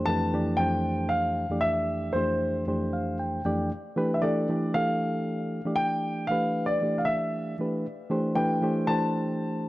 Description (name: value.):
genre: jazz.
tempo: 116 BPM.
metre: 4/4.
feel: straight.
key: F lydian.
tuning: A4 = 444 Hz.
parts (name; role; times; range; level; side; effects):
bright reed electric piano; accompaniment; 0.0-9.7 s; F2 to G5; -27 LUFS; equal; spring reverb.
warm concert grand piano; melody; 0.1-9.7 s; C5 to A5; -28 LUFS; equal; none.
room: light reverb, studio reverb.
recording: dark, warm production.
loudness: -25 LUFS.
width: side -17 dB against mid.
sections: 0.0-9.7 A section.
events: reed electric piano fill 2.7-3.7.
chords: 0.0 Fmaj9; 3.7 G9; 7.8 Am7.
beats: 0.07 0.59 1.11 | 1.63 2.15 2.66 3.18 | 3.70 4.22 4.74 5.25 | 5.77 6.29 6.81 7.33 | 7.84 8.36 8.88 9.40.